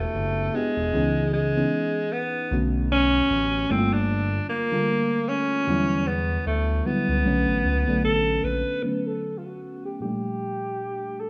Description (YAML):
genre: contemporary R&B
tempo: 76 BPM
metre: 4/4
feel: swing 58% on 16ths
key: B minor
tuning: A4 = 442 Hz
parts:
  - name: clear alto saxophone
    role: melody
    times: 0.0-11.3 s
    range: G#3 to B4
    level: -27 LUFS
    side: equal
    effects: low-pass filter
  - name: mellow FM electric piano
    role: accompaniment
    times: 0.0-11.3 s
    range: Bb2 to A4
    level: -30 LUFS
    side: equal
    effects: chorus, low-pass filter
  - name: smooth synth bass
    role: bass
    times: 0.0-8.6 s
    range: E1 to E2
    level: -29 LUFS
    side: equal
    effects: none
room: moderate studio reverb, RT60 0.6 s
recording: rough home demo mix, small room ambience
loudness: -24 LUFS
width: mono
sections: 0.0-8.8 A section; 8.8-11.3 B section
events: none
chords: 0.0 Em7; 0.9 C#m7; 2.5 Bm7; 3.7 Gm7; 5.7 Em7; 7.2 Bm7; 10.0 Gm7